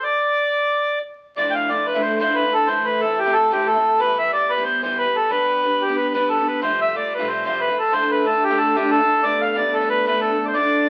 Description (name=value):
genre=celtic folk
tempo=183 BPM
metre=4/4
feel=swing 55% on 8ths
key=D dorian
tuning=A4 = 440 Hz
part: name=accordion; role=melody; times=0.0-10.9 s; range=G4 to G5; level=-20 LUFS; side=equal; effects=none
part: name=picked twelve-string acoustic guitar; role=accompaniment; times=1.4-10.9 s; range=D2 to G4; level=-27 LUFS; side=equal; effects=none
room=wet studio reverb, RT60 0.8 s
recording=very old 78 rpm record, vinyl crackle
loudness=-20 LUFS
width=mono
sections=0.0-1.4 A section; 1.4-10.9 A section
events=none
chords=0.0 N.C.; 1.4 Dmadd9; 2.7 Am; 4.0 Em; 5.3 G; 6.6 Fadd9; 7.9 Dm; 9.2 Gadd9